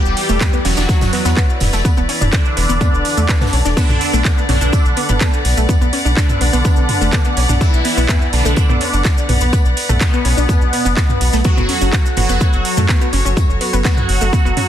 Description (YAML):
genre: melodic techno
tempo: 125 BPM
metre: 4/4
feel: straight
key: B minor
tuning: A4 = 438 Hz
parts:
  - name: resonant sweep polysynth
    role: melody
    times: 0.0-14.7 s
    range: B2 to G4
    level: -21 LUFS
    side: equal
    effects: chorus, phaser, sidechain pumping, digital delay
  - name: rich chamber string section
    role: sustained chords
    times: 0.0-14.7 s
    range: E3 to F#5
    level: -23 LUFS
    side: left 2 dB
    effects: sidechain pumping
  - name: round analog bass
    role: bass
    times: 0.1-14.5 s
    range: E1 to F#2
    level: -17 LUFS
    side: equal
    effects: sidechain pumping
  - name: maracas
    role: percussion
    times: 0.1-14.6 s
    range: none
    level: -29 LUFS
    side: left 4 dB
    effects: none
  - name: house drum kit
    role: drums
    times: 0.2-14.7 s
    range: crash cymbal, handclaps, hi-hat, toms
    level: -21 LUFS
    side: right 1 dB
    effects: none
  - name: modern studio drum kit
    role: drums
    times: 0.2-14.7 s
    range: hi-hat, snare drum, tambourine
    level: -32 LUFS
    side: equal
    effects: none
  - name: analog pluck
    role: arpeggios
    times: 0.3-14.6 s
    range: A3 to D5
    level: -23 LUFS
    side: equal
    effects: chorus, sidechain pumping, ping-pong delay
  - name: electronic kick drum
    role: drums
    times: 0.4-14.4 s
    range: none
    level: -14 LUFS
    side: equal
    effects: none
room: light reverb, small room ambience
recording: dense, heavily limited modern master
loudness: -12 LUFS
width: side -10 dB against mid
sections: 0.0-14.7 A section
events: none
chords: 0.0 Em7; 3.8 Bm; 11.4 F#m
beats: 0.41 0.89 1.37 | 1.85 2.33 2.81 3.29 | 3.77 4.25 4.73 5.21 | 5.69 6.17 6.65 7.13 | 7.61 8.09 8.57 9.05 | 9.53 10.01 10.49 10.97 | 11.45 11.93 12.41 12.89 | 13.37 13.85 14.33